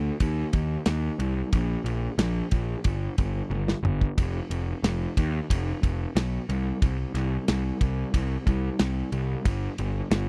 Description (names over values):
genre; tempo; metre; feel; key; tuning
classic rock; 91 BPM; 4/4; straight; unclear; A4 = 439 Hz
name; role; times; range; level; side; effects
fuzz picked electric bass; bass; 0.0-10.3 s; F1 to Eb2; -29 LUFS; equal; overdrive
damped 70s drum kit; drums; 0.2-10.3 s; kick drum, ride cymbal, snare drum, toms; -28 LUFS; equal; none
room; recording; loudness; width
little or no reverb; dry, close 1970s-style studio recording; -27 LUFS; mono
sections
0.0-10.3 A section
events
drum fill 3.5-4.2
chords
none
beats
0.20 0.86 | 1.53 2.19 2.85 3.51 | 4.17 4.83 5.49 6.15 | 6.81 7.47 8.13 8.79 | 9.45 10.11